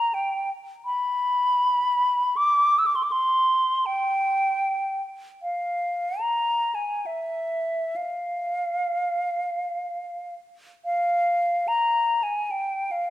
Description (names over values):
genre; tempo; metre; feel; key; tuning
classical, free, expressive piece for unaccompanied flute; 52-83 BPM; 3/4; rubato; unclear; A4 = 440 Hz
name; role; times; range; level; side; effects
hollow concert flute; solo; 0.0-13.1 s; E5 to E6; -22 LUFS; equal; none
room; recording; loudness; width
moderate recital hall reverb, RT60 1.8 s; minimal, uncompressed stereo recording; -22 LUFS; side -14 dB against mid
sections
0.0-10.8 A section; 10.8-13.1 A section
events
none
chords
none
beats
0.14 | 0.87 1.62 2.36 | 3.10 3.88 4.64 | 5.42 6.21 7.03 | 7.95 8.91 9.82 | 10.83 11.66 12.51